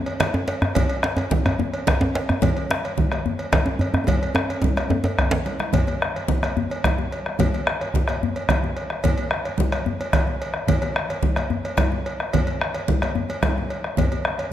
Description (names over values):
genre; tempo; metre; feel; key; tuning
west african traditional, West African drum ensemble; 145 BPM (dotted quarters); 12/8; straight; none; none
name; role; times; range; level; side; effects
bombo; percussion; 0.1-14.4 s; none; -23 LUFS; equal; none
cowbell; percussion; 0.1-14.5 s; none; -30 LUFS; right 1 dB; none
congas; percussion; 0.2-14.3 s; none; -28 LUFS; right 4 dB; none
djembe; percussion; 0.2-14.5 s; none; -28 LUFS; left 5 dB; none
djembe; percussion; 0.2-5.4 s; none; -24 LUFS; right 1 dB; none
room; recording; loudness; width
wet recital hall reverb, RT60 1.5 s; none; -20 LUFS; side -11 dB against mid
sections
0.0-5.7 A section; 5.7-14.5 B section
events
drum fill 4.1-5.7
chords
none